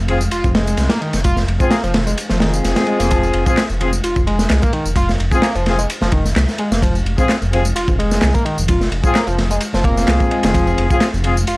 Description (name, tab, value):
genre	breakbeat, breaks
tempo	129 BPM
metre	4/4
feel	swing 54% on 16ths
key	F minor pentatonic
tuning	A4 = 440 Hz
part	dark detuned saw bass	bass	0.0-11.6 s	F1 to C2	-18 LUFS	equal	none
part	warm brass ensemble	stabs	0.1-11.3 s	C4 to Ab4	-19 LUFS	left 2 dB	analog delay
part	crunchy breakbeat drum kit	drums	0.1-11.6 s	kick drum, ride cymbal, snare drum	-18 LUFS	equal	none
part	congas	percussion	0.1-11.5 s	none	-29 LUFS	left 2 dB	none
part	electronic tambourine and handclaps	drums	0.2-11.6 s	none	-28 LUFS	left 1 dB	none
part	overdriven synth lead	riff	0.3-11.6 s	Eb3 to F4	-22 LUFS	equal	distortion, tube saturation, vintage 12-bit sampler grit, analog delay
room	little or no reverb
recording	dry, gritty hardware recording, vinyl crackle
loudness	-14 LUFS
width	side -22 dB against mid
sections	0.0-11.6 A section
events	none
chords	0.0 Fm